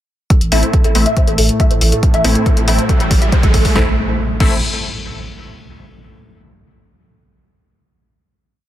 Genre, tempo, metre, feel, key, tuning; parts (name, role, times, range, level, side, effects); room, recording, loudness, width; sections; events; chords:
driving peak-time techno; 139 BPM; 4/4; straight; A minor; A4 = 440 Hz
woody wave-folded pluck; riff; 0.3-4.6 s; A4 to E5; -21 LUFS; equal; ensemble chorus, vintage 12-bit sampler grit, sidechain pumping, tape echo
analog drone; drone; 0.7-3.8 s; A2 to A3; -24 LUFS; equal; chorus, sidechain pumping
electronic kick drum; drums; 0.3-4.5 s; -14 LUFS; equal
punchy analog drum machine; drums; 0.3-4.5 s; crash cymbal, hi-hat, snare drum; -22 LUFS; left 2 dB; sidechain pumping on hats, sidechain pumping on cymbals
riser and impact; sound effects; 1.8-5.5 s; -24 LUFS; right 1 dB
saturated sub bass; bass; 0.4-4.6 s; A1; -17 LUFS; equal; overdrive, sidechain pumping, low-pass filter
rave stab; stabs; 0.5-4.6 s; A3 to E4; -21 LUFS; left 1 dB; chorus, built-in reverb, sidechain pumping, tape echo
light reverb; dense, heavily limited modern master; -11 LUFS; side -12 dB against mid
0.3-3.8 build; 3.8-5.5 final chord
build-up 0.3-3.8; filter sweep on synth arpeggio sound 0.3-3.8; riser 1.8-3.8; drum fill 2.0-3.8
0.3 Am